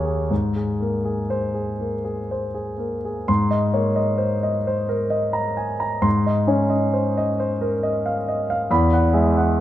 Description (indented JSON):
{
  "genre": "classical, impressionist solo piano",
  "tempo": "40-46 BPM (dotted quarters)",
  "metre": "6/8",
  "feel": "rubato",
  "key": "Ab major",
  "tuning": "A4 = 440 Hz",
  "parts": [
    { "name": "warm concert grand piano", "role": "solo", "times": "0.0-9.6 s", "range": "Eb2 to C6", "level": "-19 LUFS", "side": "equal", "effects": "none" }
  ],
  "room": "moderate concert hall reverb, RT60 1.8 s",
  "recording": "none",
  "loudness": "-19 LUFS",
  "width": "side -13 dB against mid",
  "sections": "0.0-3.3 A section; 3.3-9.6 B section",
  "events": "none",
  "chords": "0.3 Abadd9; 6.0 Dbmaj9/Ab; 8.7 Eadd9",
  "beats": "| 0.30 1.80 | 3.28 4.68 | 6.05 7.39 | 8.70"
}